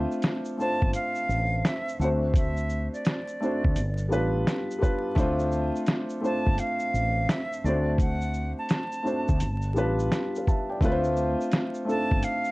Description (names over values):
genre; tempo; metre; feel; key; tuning
lo-fi hip hop; 85 BPM; 4/4; swing 62% on 16ths; D dorian; A4 = 440 Hz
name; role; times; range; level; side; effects
felt-muted upright piano; accompaniment; 0.0-12.5 s; G3 to A5; -28 LUFS; equal; none
fretless electric bass; bass; 0.0-12.2 s; G1 to D2; -28 LUFS; equal; none
lo-fi sampler-style drum kit; drums; 0.1-12.5 s; hi-hat, kick drum, shaker, snare drum; -25 LUFS; equal; overdrive
silver concert flute; melody; 0.6-12.5 s; D5 to A5; -31 LUFS; right 1 dB; none
room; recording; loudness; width
moderate studio reverb, RT60 0.6 s; vinyl crackle, nothing above 11.0 kHz; -24 LUFS; side -21 dB against mid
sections
0.0-12.5 A section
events
none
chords
0.0 Dm7; 2.0 D7; 3.7 G7; 5.2 Dm7; 7.6 D7; 9.4 G7; 10.8 Dm7